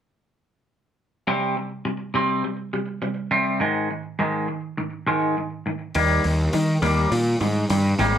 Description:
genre	quiet-loud alternative rock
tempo	103 BPM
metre	4/4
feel	straight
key	C minor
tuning	A4 = 444 Hz
part	twangy electric guitar	arpeggios	1.3-8.2 s	Ab2 to C4	-23 LUFS	equal	phaser, slapback echo
part	hi-hat	drums	5.9-8.1 s	none	-34 LUFS	left 1 dB	none
part	fuzz picked electric bass	bass	6.0-8.2 s	Ab1 to Eb3	-20 LUFS	equal	overdrive
room	moderate small room reverb, RT60 0.5 s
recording	none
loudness	-21 LUFS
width	side -9 dB against mid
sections	1.3-8.2 A section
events	none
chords	1.3 C5; 3.6 Ab5; 5.9 Eb

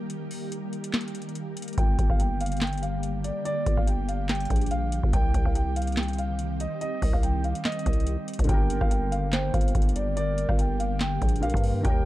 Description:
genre	hip hop, trap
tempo	143 BPM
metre	4/4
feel	half-time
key	G minor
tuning	A4 = 442 Hz
part	felt-muted upright piano	accompaniment	0.0-1.8, 8.4-12.1 s	D3 to Bb4	-37 LUFS	left 2 dB	low-pass filter
part	ethereal airy pad	sustained chords	0.0-12.1 s	D3 to G4	-34 LUFS	equal	ensemble chorus, built-in reverb
part	booming analog drum machine	drums	0.1-12.0 s	handclaps, hi-hat, kick drum, rim click, snare drum	-25 LUFS	equal	none
part	dark baby grand piano	melody	1.8-12.1 s	D5 to G5	-32 LUFS	right 1 dB	low-pass filter
part	growling 808-style bass	bass	1.8-12.1 s	G1 to G2	-28 LUFS	equal	none
part	hollow clarinet-like synth lead	second line	8.5-12.1 s	Bb4 to C5	-37 LUFS	right 3 dB	chorus, tape echo
room	little or no reverb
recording	dark, warm production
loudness	-24 LUFS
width	side -16 dB against mid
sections	0.0-8.5 A section; 8.5-12.1 B section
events	break 0.0-1.8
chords	0.0 Eb; 1.8 Gm; 5.1 Cm; 8.5 Gm

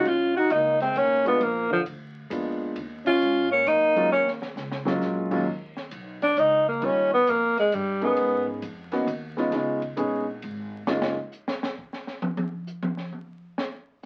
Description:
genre	jazz, small-group swing and bop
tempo	133 BPM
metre	3/4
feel	swing 66% on 8ths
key	Eb minor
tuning	A4 = 440 Hz
part	breathy tenor saxophone	melody	0.0-8.5 s	F3 to Gb4	-23 LUFS	equal	none
part	breathy trombone	second line	0.0-4.4 s	D3 to Eb4	-32 LUFS	equal	none
part	warm grand piano	accompaniment	0.0-11.2 s	Eb2 to Bb4	-29 LUFS	equal	none
part	upright bass	bass	0.0-11.2 s	Gb1 to Ab2	-42 LUFS	equal	none
part	open jazz drum kit	drums	0.1-14.1 s	crash cymbal, hi-hat, kick drum, ride cymbal, snare drum, toms	-37 LUFS	equal	none
room	moderate club ambience, RT60 0.5 s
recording	very old 78 rpm record, vinyl crackle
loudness	-25 LUFS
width	mono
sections	0.0-5.5 A section; 5.5-14.1 B section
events	band accent 3.0; drum fill 4.1-5.0; tenor saxophone solo 5.5-14.1; drum solo 10.9-14.1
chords	0.1 Bbm11; 1.4 Bb7b9; 2.8 Ebm11; 5.5 Badd9; 6.8 Eb7; 8.2 Abmadd9; 9.5 Db9; 10.9 Gbmaj13; 12.2 N.C.

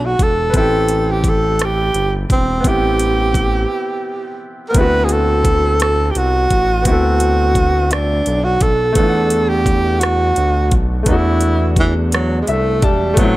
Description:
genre	slow six-eight R&B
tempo	57 BPM (dotted quarters)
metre	6/8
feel	straight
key	unclear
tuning	A4 = 437 Hz
part	breathy tenor saxophone	melody	0.0-13.4 s	E3 to B4	-17 LUFS	right 1 dB	slapback echo
part	clear baby grand piano	accompaniment	0.0-13.4 s	A3 to A5	-22 LUFS	left 2 dB	none
part	smooth gliding synth bass	bass	0.0-13.4 s	E1 to E2	-18 LUFS	equal	none
part	smooth R&B drum kit	drums	0.2-13.3 s	hi-hat, kick drum, rim click	-17 LUFS	equal	none
room	little or no reverb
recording	none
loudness	-13 LUFS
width	side -17 dB against mid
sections	0.0-13.2 A section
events	break 3.7-4.7; grand piano fill 12.1-13.2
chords	0.0 D13 (rootless); 0.5 Am9; 4.7 D13; 9.0 E9sus4

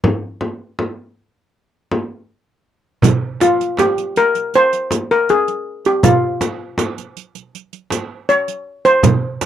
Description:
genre	Arabic maqam ensemble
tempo	80 BPM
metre	4/4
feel	straight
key	C maqam hijaz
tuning	A4 = 440 Hz
part	steel pan	melody	0.0-9.5 s	F4 to Db5+25c	-14 LUFS	equal	none
part	frame drum	percussion	0.0-9.5 s	none	-19 LUFS	left 1 dB	none
part	darbuka	percussion	3.0-9.5 s	none	-19 LUFS	right 4 dB	none
part	riq	percussion	3.0-9.5 s	none	-23 LUFS	right 13 dB	none
room	moderate booth ambience, RT60 0.2 s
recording	dry, close 1970s-style studio recording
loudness	-15 LUFS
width	side -10 dB against mid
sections	0.0-3.0 A section; 3.0-9.5 B section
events	none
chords	none

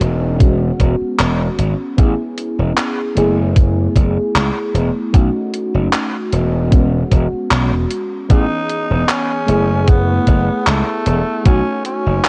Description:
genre	vaporwave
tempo	76 BPM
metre	4/4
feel	swing 54% on 16ths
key	E major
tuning	A4 = 439 Hz
part	mellow FM electric piano	accompaniment	0.0-12.3 s	E3 to G#4	-22 LUFS	equal	subtle chorus, cassette tape, analog delay
part	gritty slap bass	bass	0.0-12.2 s	E1 to C#2	-19 LUFS	equal	overdrive
part	gated 80s digital drum machine	drums	0.0-12.3 s	handclaps, hi-hat	-23 LUFS	equal	gated reverb, vintage 12-bit sampler grit
part	electronic kick drum	drums	0.4-11.6 s	none	-14 LUFS	equal	vintage 12-bit sampler grit
part	growling tenor saxophone	melody	8.3-12.3 s	A3 to D#4	-23 LUFS	equal	vintage 12-bit sampler grit, tape echo
room	light reverb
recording	cassette tape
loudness	-16 LUFS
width	mono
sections	0.0-12.3 A section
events	none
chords	0.4 E69; 2.0 Amaj7; 3.2 F#m11; 5.1 B9 (rootless); 6.7 E69; 8.3 Amaj7; 9.5 F#m11; 11.5 B9

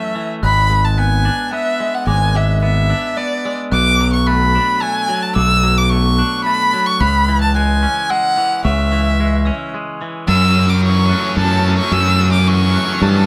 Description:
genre	rock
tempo	110 BPM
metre	3/4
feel	straight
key	F# minor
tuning	A4 = 440 Hz
part	warm violin	melody	0.0-13.3 s	D5 to E6	-20 LUFS	equal	none
part	glockenspiel with hard plastic mallets	arpeggios	0.0-13.3 s	C#6 to A6	-31 LUFS	equal	none
part	twangy electric guitar	arpeggios	0.0-13.3 s	F#2 to D4	-26 LUFS	equal	none
part	growling fingered electric bass	bass	0.4-13.3 s	G#1 to G2	-17 LUFS	equal	overdrive
part	overdriven electric guitar	riff	10.3-13.3 s	F#3 to C#4	-23 LUFS	equal	none
room	moderate small room reverb, RT60 0.5 s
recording	band playing live in one room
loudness	-15 LUFS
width	mono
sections	0.0-10.3 A section; 10.3-13.3 B section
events	build-up 10.3-13.3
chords	0.4 G#dim; 3.7 Bm7; 7.0 C#m; 10.3 F#m7

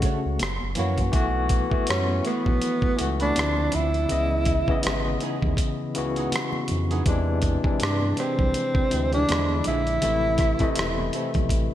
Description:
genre	R&B, neo-soul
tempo	81 BPM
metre	4/4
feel	swing 57% on 16ths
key	unclear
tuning	A4 = 439 Hz
part	breathy tenor saxophone	melody	0.0-11.1 s	C#3 to E4	-26 LUFS	right 1 dB	digital delay
part	flamenco guitar	second line	0.0-11.3 s	E3 to C#5	-36 LUFS	right 6 dB	wide subtle chorus
part	barky tine electric piano	accompaniment	0.0-11.7 s	B#2 to D#5	-27 LUFS	left 3 dB	overdrive, medium tremolo
part	dusty soul sampler-style drum kit	drums	0.0-11.7 s	hi-hat, kick drum, rim click	-26 LUFS	equal	gated reverb
part	smooth synth bass	bass	0.3-11.7 s	E1 to G2	-27 LUFS	equal	none
part	congas	percussion	0.4-11.7 s	none	-38 LUFS	right 2 dB	none
room	light reverb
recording	bright 1980s-style digital production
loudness	-21 LUFS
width	side -12 dB against mid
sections	0.0-1.1 A section; 1.1-11.7 B section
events	none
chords	0.4 F#7; 1.1 B7sus4; 3.4 Dm9; 4.1 C#m9; 7.1 E7alt; 9.3 E7b9; 10.0 Am

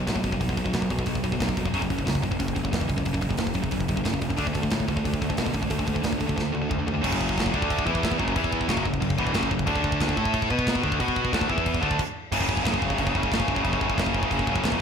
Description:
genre	heavy metal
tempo	182 BPM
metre	4/4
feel	straight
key	F# minor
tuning	A4 = 440 Hz
part	high-gain distorted guitar	riff	0.0-14.8 s	E2 to B4	-25 LUFS	equal	distortion, slapback echo
part	fuzz picked electric bass	bass	0.0-14.8 s	E1 to B2	-30 LUFS	equal	overdrive
part	tight metal drum kit	drums	0.1-14.8 s	crash cymbal, hi-hat, kick drum, snare drum, toms	-28 LUFS	equal	none
room	moderate recital hall reverb, RT60 1.4 s, small room ambience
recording	big arena sound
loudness	-23 LUFS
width	side -7 dB against mid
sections	0.0-7.0 A section; 7.0-12.3 B section; 12.3-14.8 C section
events	drum fill 6.4-7.0; stop 12.0-12.3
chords	0.0 B5; 1.7 F#5; 4.4 D5; 7.0 F#5; 7.5 D5; 7.9 E5; 8.2 F#5; 8.4 E5; 8.7 F#5; 9.7 D5; 10.2 A5; 10.5 B5; 10.8 D5; 11.0 B5; 11.3 D5; 11.5 E5; 11.8 D5; 12.3 F#5

